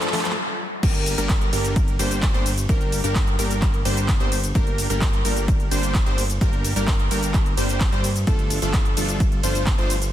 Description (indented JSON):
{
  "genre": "EDM, festival progressive house",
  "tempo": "129 BPM",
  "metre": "4/4",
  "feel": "straight",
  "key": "G minor",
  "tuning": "A4 = 436 Hz",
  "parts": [
    { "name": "plucky unison lead", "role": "arpeggios", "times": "0.0-10.0 s", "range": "A4 to C5", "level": "-31 LUFS", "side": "equal", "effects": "sidechain pumping, tape echo" },
    { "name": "supersaw stab", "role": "riff", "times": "0.0-10.0 s", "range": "F3 to C5", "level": "-28 LUFS", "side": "equal", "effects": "sidechain pumping, tape echo" },
    { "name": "big-room dance drum kit", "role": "drums", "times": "0.0-10.1 s", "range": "crash cymbal, handclaps, hi-hat, ride cymbal, shaker", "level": "-27 LUFS", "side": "equal", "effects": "overdrive" },
    { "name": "riser and noise sweep", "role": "sound effects", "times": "0.0-0.8 s", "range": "none", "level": "-33 LUFS", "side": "left 2 dB", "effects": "none" },
    { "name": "fat analog bass", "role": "bass", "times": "0.8-10.1 s", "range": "G1 to G2", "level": "-26 LUFS", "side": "equal", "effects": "sidechain pumping" },
    { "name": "electronic kick drum", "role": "drums", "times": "0.8-9.8 s", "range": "none", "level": "-21 LUFS", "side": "equal", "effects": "overdrive" }
  ],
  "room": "light reverb, digital ambience",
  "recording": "dense, heavily limited modern master",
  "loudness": "-19 LUFS",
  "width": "side -12 dB against mid",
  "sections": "0.8-10.1 A section",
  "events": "drum fill 0.0-0.4; riser 0.0-0.4; noise sweep 0.0-0.8; stop 0.4-0.8; drop 0.8-10.1",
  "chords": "0.0 Dmadd11/G; 0.8 Gm; 8.3 Dm/G",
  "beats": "0.37 | 0.83 1.30 1.76 2.23 | 2.69 3.16 3.62 4.09 | 4.55 5.02 5.48 5.95 | 6.41 6.88 7.34 7.81 | 8.27 8.74 9.20 9.67"
}